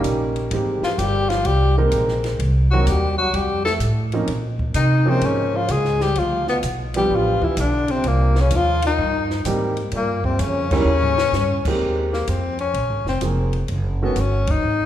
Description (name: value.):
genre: jazz, small-group swing and bop.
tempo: 128 BPM.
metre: 4/4.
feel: swing 67% on 8ths.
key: Ab major from 11.8 s.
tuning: A4 = 440 Hz.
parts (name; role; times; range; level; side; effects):
breathy tenor saxophone; melody; 0.0-14.9 s; Bb3 to A4; -22 LUFS; left 4 dB; none.
clear trombone; second line; 0.0-11.7 s; Bb2 to A3; -29 LUFS; right 3 dB; none.
warm baby grand piano; accompaniment; 0.0-14.2 s; Eb3 to Bb4; -24 LUFS; right 2 dB; none.
upright bass; bass; 0.0-14.9 s; F1 to C3; -21 LUFS; equal; none.
compact cocktail drum kit; drums; 0.0-14.5 s; crash cymbal, hi-hat, kick drum, ride cymbal, snare drum, toms; -29 LUFS; equal; none.
room: wet recital hall reverb, RT60 1.7 s.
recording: recorded in a church or concert hall.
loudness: -17 LUFS.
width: side -11 dB against mid.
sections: 0.0-11.8 A section; 11.8-14.9 B section.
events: band accent 10.6, 14.4; drum fill 10.9-11.3.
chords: 0.0 Eb7; 0.5 Abmaj9; 2.4 Cm7b5; 3.3 F7; 4.3 Bbm9; 6.2 G7; 8.0 Cm7; 9.9 Gm7b5; 10.9 Eb7; 11.8 Ab69; 13.7 Ebm7b5.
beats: 0.04 | 0.51 0.98 1.45 1.92 | 2.39 2.86 3.33 3.80 | 4.27 4.74 5.21 5.68 | 6.15 6.62 7.09 7.57 | 8.04 8.51 8.98 9.45 | 9.92 10.39 10.86 11.33 | 11.80 12.27 12.74 13.21 | 13.69 14.15 14.63.